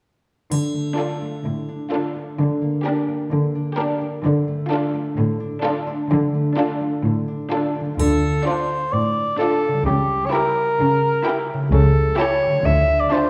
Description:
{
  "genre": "cinematic, playful, whimsical film cue",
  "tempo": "129 BPM",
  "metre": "4/4",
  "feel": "straight",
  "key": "D minor",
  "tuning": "A4 = 440 Hz",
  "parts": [
    { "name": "concert harp", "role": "arpeggios", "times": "0.5-13.3 s", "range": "C#3 to G4", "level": "-29 LUFS", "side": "equal", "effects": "none" },
    { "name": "rich symphonic cello section", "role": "bass", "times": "0.5-13.0 s", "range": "A2 to D3", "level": "-24 LUFS", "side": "equal", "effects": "none" },
    { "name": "triangle", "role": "percussion", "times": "0.5-1.4, 8.0-8.9 s", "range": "none", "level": "-40 LUFS", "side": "equal", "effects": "none" },
    { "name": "rich chamber violin section", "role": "melody", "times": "1.0-13.3 s", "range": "A4 to A5", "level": "-33 LUFS", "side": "equal", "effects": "none" },
    { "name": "warm studio violin section", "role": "second line", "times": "1.0-13.3 s", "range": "F4 to G4", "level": "-32 LUFS", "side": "equal", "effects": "none" },
    { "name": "rich studio viola section", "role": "accompaniment", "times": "1.0-13.3 s", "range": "D4 to E4", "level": "-28 LUFS", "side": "equal", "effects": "none" },
    { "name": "mellow cor anglais", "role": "second line", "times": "8.0-13.3 s", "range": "G4 to E5", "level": "-22 LUFS", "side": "equal", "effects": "none" },
    { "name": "dark studio double bass section", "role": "bass", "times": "8.0-13.0 s", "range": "C#2 to D2", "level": "-23 LUFS", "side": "equal", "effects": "none" }
  ],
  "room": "wet recital hall reverb, RT60 1.5 s",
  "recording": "dark, warm production",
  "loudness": "-21 LUFS",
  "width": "mono",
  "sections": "0.5-8.0 A section; 8.0-13.3 B section",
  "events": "none",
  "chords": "0.5 Dm; 2.4 Gm/D; 4.2 Dm; 9.9 C#dim7; 11.7 A7/C#; 12.7 Dm"
}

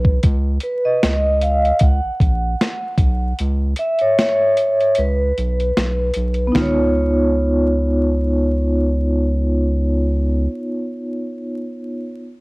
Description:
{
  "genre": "lo-fi hip hop",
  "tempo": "76 BPM",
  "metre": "4/4",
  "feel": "swing 55% on 16ths",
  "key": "unclear",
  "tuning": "A4 = 440 Hz",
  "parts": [
    { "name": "vibraphone with medium mallets", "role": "accompaniment", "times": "0.0-12.2 s", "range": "B3 to F#5", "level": "-18 LUFS", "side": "equal", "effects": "cassette tape, low-pass filter" },
    { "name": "round analog bass", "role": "bass", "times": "0.0-10.5 s", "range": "A#1 to C#2", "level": "-19 LUFS", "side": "equal", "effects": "none" },
    { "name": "boom bap sampler-style drum kit", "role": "drums", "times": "0.0-6.8 s", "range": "hi-hat, kick drum, snare drum, toms", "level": "-18 LUFS", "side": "equal", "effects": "cassette tape" }
  ],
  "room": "digital ambience",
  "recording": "home recording on cassette, vinyl crackle",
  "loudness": "-16 LUFS",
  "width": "side -24 dB against mid",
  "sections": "0.0-6.5 A section; 6.5-9.7 B section",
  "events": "vibraphone solo 0.0-6.5; kick muted 3.4-6.5",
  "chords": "0.2 Badd9/C#; 1.8 F#; 3.4 C#m; 5.0 Bsus2; 6.5 C#9"
}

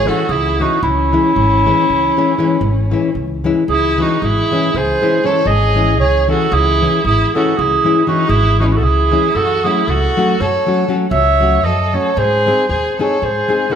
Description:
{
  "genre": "balkan folk, Balkan wedding band",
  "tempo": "233 BPM (eighths)",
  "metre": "11/8",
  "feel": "straight",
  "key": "C# harmonic minor",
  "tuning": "A4 = 439 Hz",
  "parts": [
    { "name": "mellow clarinet", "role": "melody", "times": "0.0-13.8 s", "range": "E4 to E5", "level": "-16 LUFS", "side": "right 3 dB", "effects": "none" },
    { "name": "rich violin", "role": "second line", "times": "0.0-13.8 s", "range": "C#4 to C#5", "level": "-20 LUFS", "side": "left 3 dB", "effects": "none" },
    { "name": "nylon-string guitar", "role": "accompaniment", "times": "0.0-13.8 s", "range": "E3 to G#4", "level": "-18 LUFS", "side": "left 4 dB", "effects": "none" },
    { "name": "upright bass", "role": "bass", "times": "0.0-13.4 s", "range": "G#1 to G#2", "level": "-18 LUFS", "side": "equal", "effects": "none" }
  ],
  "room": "moderate recital hall reverb, RT60 1.7 s",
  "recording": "none",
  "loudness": "-12 LUFS",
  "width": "side -8 dB against mid",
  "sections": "0.0-3.7 A section; 3.7-13.8 B section",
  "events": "none",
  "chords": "0.0 C#m; 9.4 F#m; 12.2 G#"
}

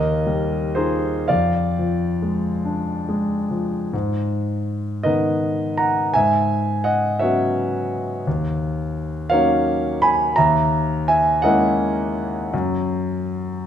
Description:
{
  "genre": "classical, impressionist solo piano",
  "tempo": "37-59 BPM (dotted quarters)",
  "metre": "6/8",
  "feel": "rubato",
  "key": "F minor, G# minor from 3.9 s",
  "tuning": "A4 = 440 Hz",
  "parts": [
    { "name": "warm concert grand piano", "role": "solo", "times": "0.0-13.7 s", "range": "Eb2 to B5", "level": "-18 LUFS", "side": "equal", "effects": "none" }
  ],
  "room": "wet recital hall reverb, RT60 1.4 s",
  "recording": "minimal, uncompressed stereo recording",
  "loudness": "-18 LUFS",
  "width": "side -9 dB against mid",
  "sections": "0.0-3.9 A section; 3.9-13.7 B section",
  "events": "none",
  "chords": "0.0 Ebadd9; 1.3 Fm6; 3.9 G#madd9; 6.2 F#9sus4/G#; 8.3 D#m9; 10.4 C#m6/D#; 12.5 N.C."
}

